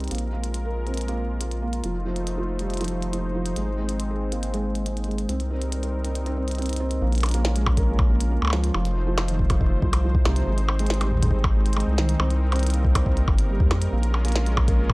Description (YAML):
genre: IDM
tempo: 139 BPM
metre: 4/4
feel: straight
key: Bb dorian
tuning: A4 = 443 Hz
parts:
  - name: warm analog pad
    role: sustained chords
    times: 0.0-14.9 s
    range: G3 to C5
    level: -32 LUFS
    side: left 1 dB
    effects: chorus, vintage 12-bit sampler grit
  - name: felt-muted upright piano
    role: arpeggios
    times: 0.0-14.9 s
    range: C3 to C5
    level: -30 LUFS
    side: right 2 dB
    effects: low-pass filter, analog delay
  - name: round analog bass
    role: bass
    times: 0.0-14.9 s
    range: F1 to F2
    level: -24 LUFS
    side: equal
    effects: none
  - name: glitchy drum kit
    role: drums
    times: 0.0-14.9 s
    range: hi-hat, percussion blips, snare drum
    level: -29 LUFS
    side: equal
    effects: studio reverb
  - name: electronic kick drum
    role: drums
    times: 7.7-14.9 s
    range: none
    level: -22 LUFS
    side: equal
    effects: studio reverb
room: little or no reverb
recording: dry, gritty hardware recording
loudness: -21 LUFS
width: side -23 dB against mid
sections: 0.0-7.0 A section; 7.0-14.9 B section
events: none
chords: 0.1 Bb5; 1.8 F7; 3.6 Ab; 5.3 Cm7; 7.0 Bbm7; 8.7 F7; 10.5 Ab; 12.2 Cm7; 13.9 Bbm7